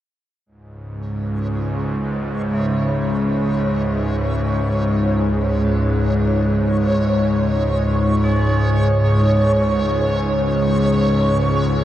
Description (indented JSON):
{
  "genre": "dark ambient drone",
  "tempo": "58 BPM",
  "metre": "4/4",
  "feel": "straight",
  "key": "C# minor",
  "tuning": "A4 = 441 Hz",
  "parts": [
    { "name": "bowed-like drone", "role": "drone", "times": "0.8-11.8 s", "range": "C#2 to G#2", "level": "-17 LUFS", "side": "equal", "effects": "built-in reverb" },
    { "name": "backwards swelling texture", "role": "texture", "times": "1.3-11.8 s", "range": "C#5", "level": "-23 LUFS", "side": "equal", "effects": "built-in reverb" },
    { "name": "tubular bells", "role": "arpeggios", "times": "2.5-11.8 s", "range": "C#4 to B4", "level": "-33 LUFS", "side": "equal", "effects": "ping-pong delay" }
  ],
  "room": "wet huge ambient reverb, RT60 7.9 s",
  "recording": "worn, warbling old tape, cassette tape, warbly pitch drift",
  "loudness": "-16 LUFS",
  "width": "side -12 dB against mid",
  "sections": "0.5-11.8 A section",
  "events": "fade-in on tubular bells 0.5-11.8",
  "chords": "0.5 C#m7"
}